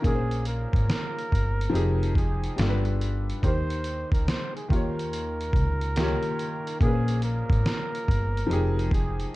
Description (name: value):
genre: lo-fi hip hop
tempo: 71 BPM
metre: 4/4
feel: swing 64% on 16ths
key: F minor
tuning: A4 = 440 Hz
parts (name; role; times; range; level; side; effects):
- felt-muted upright piano; accompaniment; 0.0-9.4 s; Bb2 to Db5; -30 LUFS; left 2 dB; none
- upright bass; bass; 0.0-9.2 s; F1 to Eb2; -27 LUFS; equal; none
- trip hop sampler-style drum kit; drums; 0.0-9.3 s; hi-hat, kick drum, snare drum; -27 LUFS; equal; vintage 12-bit sampler grit
- breathy flugelhorn; melody; 0.1-9.3 s; Ab4 to C5; -34 LUFS; right 2 dB; tape echo
room: light reverb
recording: cassette tape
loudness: -23 LUFS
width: side -18 dB against mid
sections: 0.0-9.4 A section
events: none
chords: 0.0 Bbm7; 1.7 Fm7; 2.6 G7; 3.4 Cm7/Eb; 4.7 Eb7; 6.8 Bbm7; 8.5 Fm7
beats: | 0.05 0.89 1.74 2.58 | 3.43 4.27 5.12 5.96 | 6.81 7.65 8.50 9.34